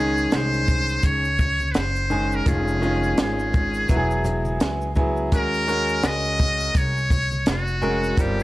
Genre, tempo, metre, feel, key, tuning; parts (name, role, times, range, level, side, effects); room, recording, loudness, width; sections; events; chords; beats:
hip hop, jazz-hop; 84 BPM; 4/4; swing 59% on 16ths; A4 = 440 Hz
trumpet with metal mute; melody; 0.0-8.4 s; Gb4 to Eb5; -25 LUFS; equal
bright grand piano; accompaniment; 0.0-8.4 s; Eb3 to Bb4; -24 LUFS; equal
upright bass; bass; 0.0-8.4 s; E1 to Eb2; -26 LUFS; equal
maracas and congas; percussion; 0.2-8.4 s; -37 LUFS; equal
compact cocktail drum kit; drums; 0.3-8.4 s; hi-hat, kick drum, shaker, snare drum; -22 LUFS; equal
small room ambience; dry, gritty hardware recording, cassette tape; -19 LUFS; side -17 dB against mid
0.0-8.4 A section
0.0 Dbmaj7(no3); 2.5 Dbadd9/F; 3.9 Eadd9; 5.3 Ebm7
0.32 1.04 1.75 | 2.46 3.18 3.89 4.61 | 5.32 6.04 6.75 7.46 | 8.18